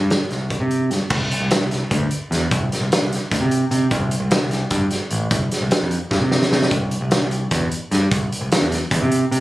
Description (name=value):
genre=math rock and midwest emo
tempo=300 BPM (eighths)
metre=7/8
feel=straight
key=C major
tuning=A4 = 440 Hz
part: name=growling picked electric bass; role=bass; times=0.0-9.4 s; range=A1 to C3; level=-20 LUFS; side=equal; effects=overdrive
part: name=loose indie drum kit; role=drums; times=0.1-9.4 s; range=crash cymbal, hi-hat, kick drum, snare drum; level=-20 LUFS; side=equal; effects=none
room=little or no reverb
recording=recorded on a phone in the room, studio ambience, compression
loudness=-17 LUFS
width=side -16 dB against mid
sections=0.0-1.1 A section; 1.1-9.4 B section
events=drum fill 6.1-6.7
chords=none